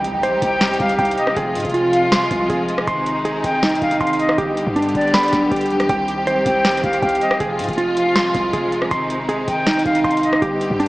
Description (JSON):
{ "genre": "hip hop, trap", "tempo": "159 BPM", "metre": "4/4", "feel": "half-time", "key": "C harmonic minor", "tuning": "A4 = 442 Hz", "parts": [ { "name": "rich symphonic string section", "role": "sustained chords", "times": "0.0-10.9 s", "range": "C3 to G4", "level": "-23 LUFS", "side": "equal", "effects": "none" }, { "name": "mellow electric guitar", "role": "arpeggios", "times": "0.0-10.9 s", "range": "D4 to C6", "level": "-19 LUFS", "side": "right 1 dB", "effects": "analog delay" }, { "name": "warm 808-style bass", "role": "bass", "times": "0.0-10.9 s", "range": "F1 to Ab2", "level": "-29 LUFS", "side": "equal", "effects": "none" }, { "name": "booming analog drum machine", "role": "drums", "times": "0.0-10.9 s", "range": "hi-hat, kick drum, rim click, snare drum", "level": "-24 LUFS", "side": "equal", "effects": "overdrive" }, { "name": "impact", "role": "sound effects", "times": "0.0-1.4 s", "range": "none", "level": "-38 LUFS", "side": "equal", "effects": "none" }, { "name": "silver concert flute", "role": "second line", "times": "0.4-10.4 s", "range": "D5 to G5", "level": "-22 LUFS", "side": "left 1 dB", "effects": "analog delay" } ], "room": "wet lush hall reverb, RT60 1.9 s", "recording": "dreamy mix soaked in reverb, small speaker sound", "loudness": "-16 LUFS", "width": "side -19 dB against mid", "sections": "0.0-10.9 A section", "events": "impact 0.0-1.4", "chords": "0.0 Cm; 1.4 Fm; 2.9 Ab; 4.4 G; 5.9 Cm; 7.4 Fm; 8.9 Ab" }